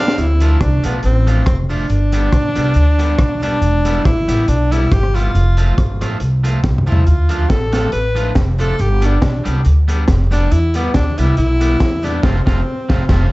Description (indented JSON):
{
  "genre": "ska",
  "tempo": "139 BPM",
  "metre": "4/4",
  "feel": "swing 55% on 8ths",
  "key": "D dorian",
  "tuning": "A4 = 440 Hz",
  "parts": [
    { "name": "bright tenor saxophone", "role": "melody", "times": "0.0-13.3 s", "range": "B3 to B4", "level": "-20 LUFS", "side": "equal", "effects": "slapback echo, plate reverb" },
    { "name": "crunchy breakbeat drum kit", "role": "drums", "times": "0.1-13.2 s", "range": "crash cymbal, hi-hat, kick drum, rim click, snare drum, toms", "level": "-18 LUFS", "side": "equal", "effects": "none" },
    { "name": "upright bass", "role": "bass", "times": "0.2-13.3 s", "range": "E1 to E2", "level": "-15 LUFS", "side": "equal", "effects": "none" },
    { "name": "cabasa", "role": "percussion", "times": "0.2-12.1 s", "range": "none", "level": "-45 LUFS", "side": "left 3 dB", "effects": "none" },
    { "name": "electric guitar at the edge of break-up", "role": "accompaniment", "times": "0.4-13.3 s", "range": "F3 to G4", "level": "-25 LUFS", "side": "right 1 dB", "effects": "plate reverb" }
  ],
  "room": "light reverb",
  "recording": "dark, warm production, nothing above 7.8 kHz",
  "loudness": "-13 LUFS",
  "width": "side -20 dB against mid",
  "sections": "0.2-13.3 A section",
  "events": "drum fill 0.0, 6.6-7.1, 13.1; band accent 0.0, 12.2-13.3",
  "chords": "0.2 Dm; 1.9 G; 3.6 Em; 5.3 F; 7.1 Dm; 8.8 G; 10.5 Em; 12.2 F"
}